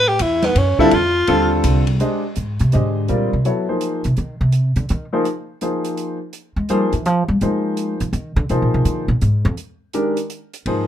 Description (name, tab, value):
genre	modal jazz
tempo	166 BPM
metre	3/4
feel	swing 65% on 8ths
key	Bb mixolydian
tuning	A4 = 440 Hz
part	clear tenor saxophone	melody	0.0-1.5 s	B3 to G4	-16 LUFS	equal	none
part	upright bass	bass	0.0-10.9 s	C2 to Ab3	-18 LUFS	equal	none
part	open jazz drum kit	drums	0.2-10.8 s	hi-hat, kick drum, ride cymbal, snare drum	-29 LUFS	right 1 dB	none
part	warm grand piano	accompaniment	0.8-10.9 s	D3 to Eb5	-19 LUFS	left 1 dB	none
room	light reverb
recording	minimal, uncompressed stereo recording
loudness	-16 LUFS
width	side -10 dB against mid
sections	0.0-2.0 A section; 2.0-10.7 A section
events	tenor saxophone solo 0.0-2.0; upright bass solo 2.0-10.7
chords	0.0 A9sus4; 0.9 F9; 2.0 Bb9sus4